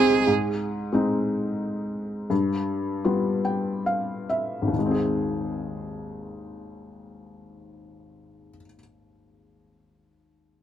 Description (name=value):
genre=folk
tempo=64-92 BPM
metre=3/4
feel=straight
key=Ab major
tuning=A4 = 440 Hz
part: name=felt-muted upright piano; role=accompaniment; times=0.0-10.6 s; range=Ab1 to G5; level=-24 LUFS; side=left 2 dB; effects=none
room=light reverb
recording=close, detailed microphones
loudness=-23 LUFS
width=side -10 dB against mid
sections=0.3-4.8 A section; 4.8-10.4 B section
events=slowing down 0.3-4.8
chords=0.3 Ab; 2.3 G7; 4.8 Ab